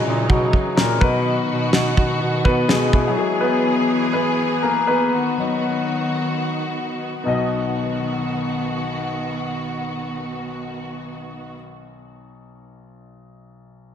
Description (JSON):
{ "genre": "piano-driven pop", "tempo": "106-125 BPM", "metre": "4/4", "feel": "swing 56% on 16ths", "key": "B major", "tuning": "A4 = 441 Hz", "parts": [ { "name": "warm concert grand piano", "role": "accompaniment", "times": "0.0-13.9 s", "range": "B1 to D#5", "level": "-22 LUFS", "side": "left 3 dB", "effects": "none" }, { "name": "muted symphonic string section", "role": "sustained chords", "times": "0.0-11.6 s", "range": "C#3 to G#4", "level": "-25 LUFS", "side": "equal", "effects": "none" }, { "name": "clear bass clarinet", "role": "bass", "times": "0.1-3.1 s", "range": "A#2 to B2", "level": "-22 LUFS", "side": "right 1 dB", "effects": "none" }, { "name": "damped 70s drum kit", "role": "drums", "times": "0.3-3.1 s", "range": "kick drum, snare drum", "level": "-21 LUFS", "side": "equal", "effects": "none" } ], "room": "wet church reverb, RT60 2.7 s", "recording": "dreamy mix soaked in reverb", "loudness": "-18 LUFS", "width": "side -8 dB against mid", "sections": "0.0-7.3 A section; 7.3-11.8 B section", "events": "grand piano solo 0.0-7.3; slowing down 3.2-7.3", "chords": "0.0 C#madd9; 1.0 B; 2.9 E/B; 5.1 B" }